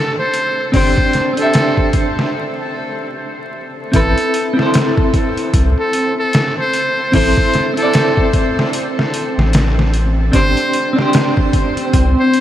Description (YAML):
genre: trip hop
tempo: 75 BPM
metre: 4/4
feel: swing 60% on 16ths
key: A minor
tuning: A4 = 440 Hz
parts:
  - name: trumpet with metal mute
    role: melody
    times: 0.0-12.4 s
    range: A4 to C5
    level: -18 LUFS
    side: equal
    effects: dub echo
  - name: semi-hollow electric guitar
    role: accompaniment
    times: 0.0-12.4 s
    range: C4 to E5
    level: -18 LUFS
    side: equal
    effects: tremolo, tape echo
  - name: trip hop sampler-style drum kit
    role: drums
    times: 0.3-12.4 s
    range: hi-hat, kick drum, snare drum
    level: -17 LUFS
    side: equal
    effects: studio reverb
  - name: soft dub sub bass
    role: bass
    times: 0.7-12.1 s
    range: G1 to C2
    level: -15 LUFS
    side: equal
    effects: none
  - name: backwards swelling texture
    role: texture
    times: 4.7-12.4 s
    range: C4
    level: -23 LUFS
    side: equal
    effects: built-in reverb, ensemble chorus
room: moderate huge ambient reverb, RT60 8.2 s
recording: dreamy mix soaked in reverb, vinyl crackle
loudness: -12 LUFS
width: side -12 dB against mid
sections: 0.0-3.9 A section; 3.9-12.4 B section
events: break 2.3-3.9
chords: 0.0 Gsus4; 3.9 Am; 10.3 Gsus4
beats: | 0.74 1.54 2.34 3.14 | 3.94 4.74 5.54 6.34 | 7.14 7.94 8.74 9.54 | 10.34 11.14 11.94